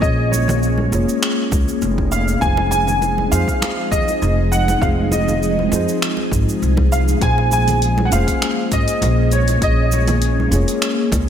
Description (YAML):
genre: sunset chillout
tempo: 100 BPM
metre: 4/4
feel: swing 54% on 16ths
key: Bb minor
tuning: A4 = 440 Hz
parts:
  - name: warm concert grand piano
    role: melody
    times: 0.0-11.1 s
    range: Db5 to Ab5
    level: -21 LUFS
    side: equal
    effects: analog chorus, diffuse ambient delay
  - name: mellow tine electric piano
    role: accompaniment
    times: 0.0-11.3 s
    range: Bb3 to Db5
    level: -24 LUFS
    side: equal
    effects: auto-pan, diffuse ambient delay
  - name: ethereal airy pad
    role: sustained chords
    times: 0.0-11.3 s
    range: F3 to Ab4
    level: -23 LUFS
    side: left 1 dB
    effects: ensemble chorus, built-in reverb, phaser
  - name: upright bass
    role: bass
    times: 0.0-11.2 s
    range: F1 to F2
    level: -18 LUFS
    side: equal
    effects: none
  - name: deep house drum kit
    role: drums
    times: 0.0-11.3 s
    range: cabasa, finger snaps, hi-hat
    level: -25 LUFS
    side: right 1 dB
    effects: none
  - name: electronic kick drum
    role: drums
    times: 0.0-11.2 s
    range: none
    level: -21 LUFS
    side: equal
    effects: none
  - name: congas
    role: percussion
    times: 0.3-11.2 s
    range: none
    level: -27 LUFS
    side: right 2 dB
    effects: none
room: moderate lush hall reverb, RT60 2.1 s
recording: dreamy mix soaked in reverb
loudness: -15 LUFS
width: side -9 dB against mid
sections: 0.0-11.3 A section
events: none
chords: 0.0 Bbm9; 2.4 Fm7; 7.2 Bbm9